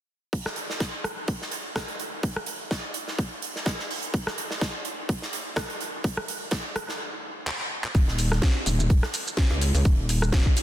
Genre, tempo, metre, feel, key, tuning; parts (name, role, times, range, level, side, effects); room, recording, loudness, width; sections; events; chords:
bass house; 126 BPM; 4/4; swing 55% on 16ths; A4 = 440 Hz
electronic kick drum; drums; 0.3-10.5 s; -23 LUFS; equal; high-pass filter on kick
huge arena drum kit; drums; 0.3-10.6 s; hi-hat, snare drum; -32 LUFS; right 2 dB; sidechain pumping on hats, high-pass filter on hats, high-pass filter on snare, high-pass filter on room
garage drum kit; drums; 0.5-10.6 s; handclaps, hi-hat, rim click, shaker, snare drum; -30 LUFS; equal; soft clipping on snare
metallic wobble bass; bass; 7.9-10.4 s; Eb1 to Db2; -24 LUFS; equal; chorus, tube saturation, sidechain pumping
light reverb, studio reverb; dense, heavily limited modern master; -25 LUFS; side -12 dB against mid
0.3-7.9 A section; 7.9-10.6 B section
drum fill 7.5-7.9